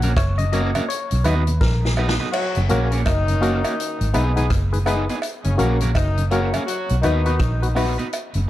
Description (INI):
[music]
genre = roots reggae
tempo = 83 BPM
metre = 4/4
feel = swing 61% on 16ths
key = F# major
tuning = A4 = 440 Hz
[part]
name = electric guitar at the edge of break-up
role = accompaniment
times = 0.0-8.1 s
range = A#3 to B4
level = -28 LUFS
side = right 4 dB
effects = tape echo
[part]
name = mellow tonewheel organ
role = accompaniment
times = 0.0-8.4 s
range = F#2 to D#4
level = -29 LUFS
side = left 1 dB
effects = overdrive, chorus vibrato, slow rotary speaker
[part]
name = percussive organ stab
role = stabs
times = 0.0-8.0 s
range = A#3 to F#5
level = -26 LUFS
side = left 4 dB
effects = chorus
[part]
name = vintage muted fingered electric bass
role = bass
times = 0.0-8.5 s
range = F#1 to D#2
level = -20 LUFS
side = equal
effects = none
[part]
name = vintage drum kit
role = drums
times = 0.0-8.5 s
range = crash cymbal, hi-hat, kick drum, rim click, snare drum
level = -26 LUFS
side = equal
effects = dub echo
[part]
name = cowbell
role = percussion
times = 0.2-8.3 s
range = none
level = -30 LUFS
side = right 3 dB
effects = none
[part]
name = mellow horn section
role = second line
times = 2.3-7.7 s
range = C#3 to F#4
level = -27 LUFS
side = left 3 dB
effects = tape echo
[sound]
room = light reverb, studio reverb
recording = none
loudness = -18 LUFS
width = side -14 dB against mid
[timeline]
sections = 0.0-2.3 A section; 2.3-8.5 B section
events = synth stab solo 0.0-2.3; drum fill 1.6-2.3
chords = 0.0 F#; 0.9 B; 2.3 F#; 3.8 G#m; 5.2 F#; 6.7 B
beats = 0.17 0.90 1.62 | 2.34 3.06 3.79 4.51 | 5.23 5.96 6.68 7.40 | 8.12